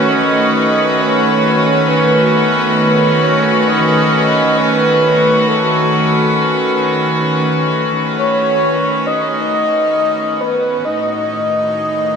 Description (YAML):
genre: ambient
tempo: free time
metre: none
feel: none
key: B mixolydian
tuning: A4 = 440 Hz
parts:
  - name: breathy flute-like synth lead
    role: melody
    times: 0.0-12.2 s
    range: A4 to D#5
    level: -16 LUFS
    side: equal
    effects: lush chorus, shimmer reverb, dub echo
  - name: rich chamber string section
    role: sustained chords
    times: 0.0-12.2 s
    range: A2 to B4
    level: -13 LUFS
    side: equal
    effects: shimmer reverb
room: wet echo chamber reverb, RT60 2.1 s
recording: echo-heavy mix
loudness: -11 LUFS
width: side -6 dB against mid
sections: 0.0-12.2 A section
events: fade-in on soft synth lead 0.0-12.2; fade-out 8.5-12.2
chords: 0.0 B9/D#; 10.9 Aadd9